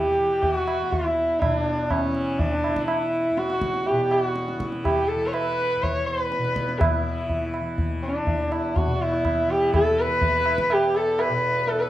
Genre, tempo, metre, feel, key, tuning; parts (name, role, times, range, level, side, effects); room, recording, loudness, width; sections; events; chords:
indian classical, Hindustani; 123 BPM; 4/4; straight; E raga kafi; A4 = 440 Hz
dark sarangi; melody; 0.0-11.9 s; C#4 to C#5; -23 LUFS; equal
tanpura; drone; 0.0-11.9 s; E2 to E3; -30 LUFS; equal
hand-pumped harmonium; second line; 0.1-11.9 s; C#4 to C#5; -33 LUFS; equal
tabla; percussion; 0.4-11.9 s; -27 LUFS; equal
moderate studio ambience, RT60 0.5 s; dark, warm production; -21 LUFS; side -14 dB against mid
0.0-11.9 A section